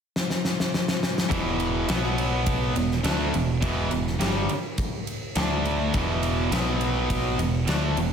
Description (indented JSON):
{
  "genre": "hard rock",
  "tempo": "103 BPM",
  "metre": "4/4",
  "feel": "straight",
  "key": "unclear",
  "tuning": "A4 = 440 Hz",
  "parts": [
    { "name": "huge arena drum kit", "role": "drums", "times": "0.2-8.1 s", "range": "kick drum, ride cymbal, snare drum", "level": "-27 LUFS", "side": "left 1 dB", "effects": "none" },
    { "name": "cranked stack guitar", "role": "riff", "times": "1.3-8.1 s", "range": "E2 to D4", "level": "-28 LUFS", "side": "left 7 dB", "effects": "overdrive" },
    { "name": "heavy high-gain guitar", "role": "riff", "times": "1.3-8.1 s", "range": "E2 to D4", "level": "-28 LUFS", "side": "right 9 dB", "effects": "distortion, slapback echo" },
    { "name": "growling picked electric bass", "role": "bass", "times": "1.3-8.1 s", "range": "E1 to D2", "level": "-28 LUFS", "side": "equal", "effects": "overdrive" }
  ],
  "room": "moderate lush hall reverb, RT60 1.6 s, small room ambience",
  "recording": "big arena sound",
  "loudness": "-22 LUFS",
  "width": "side -7 dB against mid",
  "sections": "0.0-1.3 A section; 1.3-8.1 B section",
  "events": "drum fill 0.1-1.3",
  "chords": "0.0 N.C.; 1.3 E5; 1.9 B5; 2.8 E5; 5.4 D5; 5.9 E5; 6.5 B5; 7.4 E5"
}